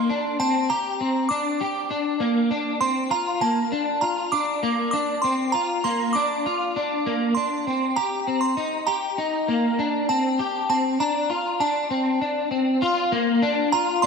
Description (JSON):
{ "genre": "dream pop", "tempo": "99 BPM", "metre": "4/4", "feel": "straight", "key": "Bb major", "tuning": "A4 = 441 Hz", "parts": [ { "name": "glassy synth bell", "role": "melody", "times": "0.0-14.1 s", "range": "A5 to D6", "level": "-25 LUFS", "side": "right 2 dB", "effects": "chorus, ping-pong delay" }, { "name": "electric guitar at the edge of break-up", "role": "arpeggios", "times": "0.0-14.1 s", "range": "Bb3 to G4", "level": "-22 LUFS", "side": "left 2 dB", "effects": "ensemble chorus, ping-pong delay" } ], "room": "wet lush hall reverb, RT60 2.6 s", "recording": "dark, warm production", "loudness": "-21 LUFS", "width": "side -5 dB against mid", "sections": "0.0-12.8 A section; 12.8-14.1 B section", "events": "none", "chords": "0.0 Eb5 (rootless); 0.7 Gm; 3.1 Bb; 8.0 Eb6; 10.4 Gm; 11.6 Amadd11/C; 12.8 Bb" }